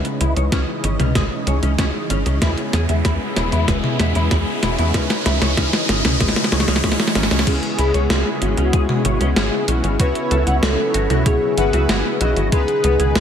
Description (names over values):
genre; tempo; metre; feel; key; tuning
synthwave; 95 BPM; 4/4; straight; C# minor; A4 = 440 Hz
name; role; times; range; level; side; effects
analog string pad; sustained chords; 0.0-13.2 s; B2 to D#5; -26 LUFS; right 1 dB; ensemble chorus, sidechain pumping
analog synth brass; stabs; 0.0-13.2 s; C#3 to D#5; -25 LUFS; left 2 dB; chorus, digital delay
tight sequencer bass; bass; 0.0-13.2 s; E1 to E2; -20 LUFS; equal; tube saturation
gated 80s digital drum machine; drums; 0.0-13.2 s; crash cymbal, hi-hat, snare drum, toms; -21 LUFS; equal; gated reverb, gated reverb snare
riser; sound effects; 0.8-7.5 s; none; -27 LUFS; equal; none
clean electric guitar; riff; 0.2-13.2 s; G#3 to F#5; -28 LUFS; left 2 dB; ensemble chorus, low-pass filter, ping-pong delay
electronic kick drum; drums; 0.5-12.6 s; none; -21 LUFS; equal; none
warm velvety synth lead; melody; 7.5-13.2 s; F#4 to B4; -22 LUFS; left 2 dB; chorus, cassette tape, ping-pong delay
room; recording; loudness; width
light reverb; none; -16 LUFS; side -8 dB against mid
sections
0.0-7.5 A section; 7.5-13.2 B section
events
drum fill 0.0-7.5; filter sweep on analog polysynth 0.0-7.5; filter sweep on clean electric guitar 0.0-7.5; riser 0.8-7.5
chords
0.0 C#madd9; 2.4 E6; 4.9 C#madd9; 7.5 C#m7; 10.0 F#7sus4; 12.5 G#m